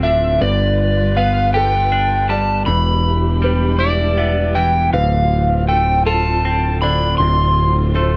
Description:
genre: rock.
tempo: 53 BPM (dotted quarters).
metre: 6/8.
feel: straight.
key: D dorian.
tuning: A4 = 442 Hz.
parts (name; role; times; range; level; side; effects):
overdriven slide guitar; melody; 0.0-8.2 s; D5 to C6; -20 LUFS; equal; slapback echo.
warm studio string section; sustained chords; 0.0-8.2 s; D3 to B4; -30 LUFS; equal; none.
felt-muted upright piano; arpeggios; 0.0-8.2 s; F4 to E5; -30 LUFS; equal; slapback echo.
twelve-string electric guitar; arpeggios; 0.0-8.2 s; D2 to G4; -25 LUFS; equal; slapback echo.
growling picked electric bass; bass; 0.0-8.2 s; D1 to G1; -20 LUFS; equal; overdrive.
room: moderate booth ambience, RT60 0.3 s.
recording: none.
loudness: -16 LUFS.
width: mono.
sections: 0.0-8.2 A section.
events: none.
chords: 0.4 G7; 2.7 Em7; 4.9 Dm7.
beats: | 0.42 1.55 | 2.68 3.81 | 4.94 6.07 | 7.21.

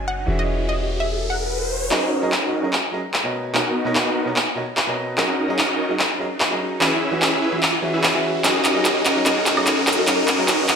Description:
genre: future bass.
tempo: 147 BPM.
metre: 4/4.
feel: swing 53% on 16ths, half-time.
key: F# mixolydian.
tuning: A4 = 440 Hz.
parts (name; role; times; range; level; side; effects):
wide unison pluck; melody; 0.0-1.6 s; D#5 to F#5; -28 LUFS; equal; ping-pong delay.
bright concert grand piano; accompaniment; 0.0-10.5 s; B2 to E5; -26 LUFS; right 1 dB; dub echo.
warm 808-style bass; bass; 0.0-1.9 s; E1 to F#1; -26 LUFS; equal; none.
riser; sound effects; 0.0-10.8 s; none; -28 LUFS; left 1 dB; none.
supersaw chords; riff; 1.9-10.8 s; B3 to E5; -22 LUFS; equal; low-pass filter, dub echo.
big-room dance drum kit; drums; 1.9-10.8 s; handclaps, hi-hat, woodblock; -20 LUFS; equal; overdrive.
room: moderate lush hall reverb, RT60 2.2 s.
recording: none.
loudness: -18 LUFS.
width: side -6 dB against mid.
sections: 0.0-1.9 A section; 1.9-10.8 B section.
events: riser 0.0-1.9, 1.9-10.8; build-up 1.9-10.8; drum fill 1.9-10.8; filter sweep on supersaw synth 1.9-10.8.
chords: 0.3 E6; 1.9 F#6; 3.3 Bmaj7; 5.2 F#6; 6.8 E6; 8.4 F#69.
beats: | 0.28 0.69 1.10 1.50 | 1.91 2.32 2.73 3.14 | 3.54 3.95 4.36 4.77 | 5.18 5.59 5.99 6.40 | 6.81 7.22 7.63 8.04 | 8.44 8.85 9.26 9.67 | 10.08 10.48.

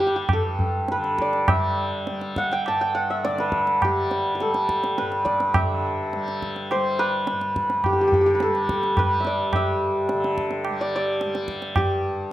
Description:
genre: indian classical, Hindustani.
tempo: 105 BPM.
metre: 7/4.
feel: straight.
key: G raga bilaval.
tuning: A4 = 438 Hz.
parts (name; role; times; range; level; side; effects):
santur; melody; 0.0-12.3 s; G4 to A5; -22 LUFS; equal; none.
tanpura; drone; 0.0-12.3 s; G2 to G3; -31 LUFS; left 2 dB; none.
tabla; percussion; 0.0-12.0 s; none; -26 LUFS; right 1 dB; none.
room: light reverb.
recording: none.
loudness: -20 LUFS.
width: side -14 dB against mid.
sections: 0.0-12.3 A section.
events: speeding up 0.0-12.3.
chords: none.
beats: 0.30 0.89 | 1.48 2.07 2.66 3.24 3.83 4.41 4.99 | 5.57 6.14 6.71 7.28 7.85 8.42 8.98 | 9.54 10.10 10.66 11.22 11.77 12.32.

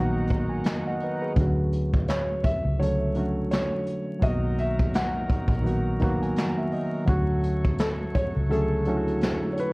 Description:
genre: lo-fi hip hop.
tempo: 84 BPM.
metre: 4/4.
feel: swing 57% on 16ths.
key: unclear.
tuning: A4 = 439 Hz.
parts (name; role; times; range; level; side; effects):
reed electric piano; accompaniment; 0.0-9.7 s; D3 to A#5; -27 LUFS; equal; cassette tape, low-pass filter.
accordion; sustained chords; 0.0-9.7 s; D#3 to C#5; -38 LUFS; equal; low-pass filter.
vintage muted fingered electric bass; bass; 0.0-9.4 s; A#1 to D2; -28 LUFS; equal; none.
vintage brush drum kit; drums; 0.3-9.7 s; handclaps, hi-hat, kick drum, snare drum; -27 LUFS; equal; vintage 12-bit sampler grit.
felt-muted upright piano; melody; 2.1-9.7 s; A4 to F#5; -30 LUFS; equal; low-pass filter, tape echo.
room: light reverb.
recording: worn, warbling old tape, cassette tape, vinyl crackle, warbly pitch drift.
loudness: -23 LUFS.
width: side -27 dB against mid.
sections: 0.0-9.7 A section.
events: none.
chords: 0.0 Bmaj7; 1.4 Dmaj7; 4.2 Bmaj7; 7.1 Dmaj7.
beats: 0.65 | 1.37 2.08 2.79 3.51 | 4.22 4.94 5.65 6.37 | 7.08 7.79 8.51 9.22.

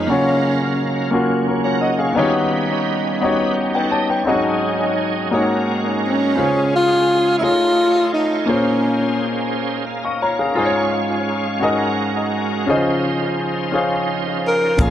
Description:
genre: slow gospel.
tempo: 57 BPM (dotted quarters).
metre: 6/8.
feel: straight.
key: Db major.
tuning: A4 = 441 Hz.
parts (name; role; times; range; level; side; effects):
breathy tenor saxophone; melody; 0.0-0.9, 6.1-9.3, 14.5-14.9 s; Db4 to Bb4; -18 LUFS; equal; dub echo.
warm grand piano; accompaniment; 0.0-14.9 s; Ab2 to Db6; -19 LUFS; left 2 dB; dub echo.
bright tonewheel organ; sustained chords; 0.0-14.9 s; Db3 to Gb5; -22 LUFS; right 4 dB; slow rotary speaker, chorus vibrato.
modern bright fingered electric bass; bass; 14.8-14.9 s; Bb1; -18 LUFS; equal; none.
crisp fusion drum kit; drums; 14.8-14.9 s; hi-hat, kick drum; -17 LUFS; equal; none.
room: moderate spring reverb, RT60 1.6 s.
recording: echo-heavy mix, lossy compression artefacts.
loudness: -16 LUFS.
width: side -11 dB against mid.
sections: 0.0-14.9 A section.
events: none.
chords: 0.1 Gbmaj7/Db; 2.2 Eb7alt; 4.3 Ab7sus4; 5.3 Ab9sus4; 6.4 Dbmaj7; 7.4 F7alt; 8.5 Bbm9; 10.6 Db/Ab; 11.6 Ab9sus4; 12.7 Dbmaj9.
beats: | 0.08 1.13 | 2.18 3.23 | 4.28 5.33 | 6.38 7.43 | 8.48 9.53 | 10.59 11.64 | 12.69 13.74 | 14.79.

